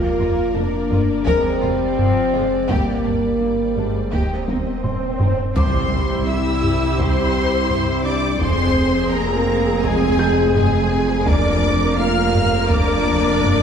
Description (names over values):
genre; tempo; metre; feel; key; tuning
cinematic, hybrid orchestral and electronic film score; 84 BPM; 4/4; straight; unclear; A4 = 441 Hz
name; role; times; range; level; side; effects
clear symphonic violin section; melody; 0.0-13.6 s; D5 to F6; -27 LUFS; left 2 dB; none
warm symphonic violin section; second line; 0.0-13.6 s; Bb3 to F5; -26 LUFS; left 1 dB; none
rich studio viola section; accompaniment; 0.0-13.6 s; F3 to Bb4; -24 LUFS; right 2 dB; none
dark French horn section; sustained chords; 0.0-13.6 s; G3 to F4; -22 LUFS; left 2 dB; none
saturated sub bass; bass; 0.0-13.6 s; Eb1 to C2; -28 LUFS; equal; none
felt-muted upright piano; texture; 0.0-13.6 s; Ab4 to G6; -30 LUFS; left 2 dB; none
rich symphonic cello section; bass; 0.2-13.6 s; C2 to G2; -26 LUFS; right 2 dB; none
rich symphonic double bass section; bass; 0.2-13.6 s; F1 to Eb2; -27 LUFS; right 3 dB; none
taiko ensemble; drums; 0.9-13.6 s; none; -22 LUFS; equal; none
swell and impact; sound effects; 3.6-8.4 s; none; -27 LUFS; right 2 dB; none
room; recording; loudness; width
wet scoring stage reverb, RT60 1.7 s; heard from further back in the room; -16 LUFS; side -7 dB against mid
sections
0.0-5.6 A section; 5.6-13.6 A section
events
swell 3.6-5.6; drum fill 4.5-5.6; impact 5.6-8.4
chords
0.0 Bb/F; 2.7 Gm; 4.1 Eb; 5.6 C; 8.4 Fm; 11.3 Bb/F